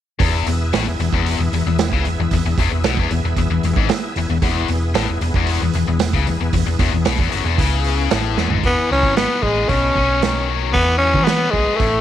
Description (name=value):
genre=classic rock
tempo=114 BPM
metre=4/4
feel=straight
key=E major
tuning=A4 = 439 Hz
part: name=bright tonewheel organ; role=sustained chords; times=0.2-8.6 s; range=B3 to E5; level=-28 LUFS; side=equal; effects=slow rotary speaker, overdrive, chorus vibrato
part: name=tight distorted guitar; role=riff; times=0.2-12.0 s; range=E2 to G#4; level=-22 LUFS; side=left 11 dB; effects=distortion
part: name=hollow-body short-scale fingered electric bass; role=bass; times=0.2-12.0 s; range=E1 to E3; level=-20 LUFS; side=equal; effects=none
part: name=vintage drum kit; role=drums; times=0.2-11.9 s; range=hi-hat, kick drum, snare drum, toms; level=-21 LUFS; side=right 3 dB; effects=none
part: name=growling tenor saxophone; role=melody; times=8.7-12.0 s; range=G#3 to C#4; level=-17 LUFS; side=equal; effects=none
room=light reverb, small room ambience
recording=1960s-style stereo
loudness=-15 LUFS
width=side -11 dB against mid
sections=0.2-8.6 A section; 8.6-12.0 B section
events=drum fill 8.4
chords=0.2 E; 9.7 Badd9; 10.7 Eadd9